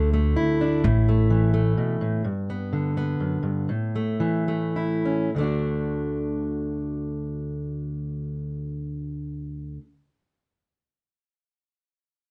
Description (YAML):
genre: folk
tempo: 101-129 BPM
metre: 3/4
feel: straight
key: D major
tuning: A4 = 440 Hz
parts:
  - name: fingerpicked plugged-in steel-string acoustic guitar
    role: accompaniment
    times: 0.0-9.8 s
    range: D2 to F#4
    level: -27 LUFS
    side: equal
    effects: none
  - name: upright bass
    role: bass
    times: 0.0-1.7 s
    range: A1 to D2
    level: -23 LUFS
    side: equal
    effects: none
room: light reverb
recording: nothing above 10.4 kHz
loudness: -25 LUFS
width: mono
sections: 0.0-5.3 A section; 5.3-8.9 B section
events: slowing down 2.2-5.3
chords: 0.0 D5; 0.8 A5; 2.2 G; 3.7 A; 5.3 D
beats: 0.37 | 0.84 1.31 1.77 | 2.24 2.71 3.19 | 3.69 4.21 4.75 | 5.32 5.92 6.51 | 7.10 7.70 8.29